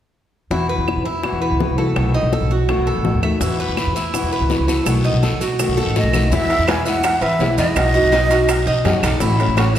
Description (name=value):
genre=latin, Cuban son and guajira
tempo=166 BPM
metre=4/4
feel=straight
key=E major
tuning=A4 = 441 Hz
part: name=nylon-string guitar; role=accompaniment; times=0.5-9.8 s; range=B2 to F#4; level=-22 LUFS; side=left 3 dB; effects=none
part: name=Cuban tres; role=arpeggios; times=0.5-9.8 s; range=D#4 to E5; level=-22 LUFS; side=right 2 dB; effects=none
part: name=upright bass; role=bass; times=0.5-9.8 s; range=A1 to E3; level=-20 LUFS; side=equal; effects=none
part: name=bongos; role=percussion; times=0.5-9.8 s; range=none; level=-27 LUFS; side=left 4 dB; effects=none
part: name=claves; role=percussion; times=0.9-9.8 s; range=none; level=-31 LUFS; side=right 5 dB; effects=none
part: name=guiro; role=percussion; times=3.4-9.8 s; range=none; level=-30 LUFS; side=left 3 dB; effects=none
part: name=maracas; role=percussion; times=3.4-9.8 s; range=none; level=-33 LUFS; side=right 5 dB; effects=none
part: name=breathy jazz flute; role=melody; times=6.0-9.0 s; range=D#5 to G#5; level=-20 LUFS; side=right 1 dB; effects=none
part: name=timbales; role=percussion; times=6.5-9.8 s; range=none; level=-25 LUFS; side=right 4 dB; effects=none
room=wet concert hall reverb, RT60 1.8 s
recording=recorded in a church or concert hall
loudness=-15 LUFS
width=side -10 dB against mid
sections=0.5-6.3 A section; 6.3-9.8 B section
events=drum fill 5.8-6.3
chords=0.5 Esus2; 2.0 B7; 3.4 Esus2; 4.9 B7; 6.3 E; 7.8 B; 9.2 F#m7/A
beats=| 0.51 0.88 1.24 1.60 | 1.97 2.33 2.69 3.05 | 3.42 3.78 4.14 4.50 | 4.87 5.23 5.59 5.95 | 6.32 6.68 7.04 7.40 | 7.76 8.13 8.49 8.85 | 9.21 9.58